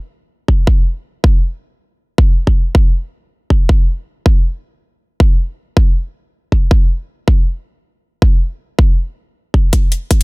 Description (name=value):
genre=future bass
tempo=159 BPM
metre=4/4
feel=swing 54% on 16ths, half-time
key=none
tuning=none
part: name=electronic kick drum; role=drums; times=0.5-10.2 s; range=none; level=-11 LUFS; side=equal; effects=none
part: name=electronic hi-hat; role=drums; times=9.7-10.2 s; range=none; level=-21 LUFS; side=left 4 dB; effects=none
room=digital ambience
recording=none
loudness=-12 LUFS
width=side -37 dB against mid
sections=0.0-9.7 A section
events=none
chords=none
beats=0.29 | 0.67 1.05 1.43 1.80 | 2.18 2.56 2.94 3.31 | 3.69 4.07 4.45 4.82 | 5.20 5.58 5.96 6.33 | 6.71 7.09 7.46 7.84 | 8.22 8.60 8.97 9.35 | 9.73 10.11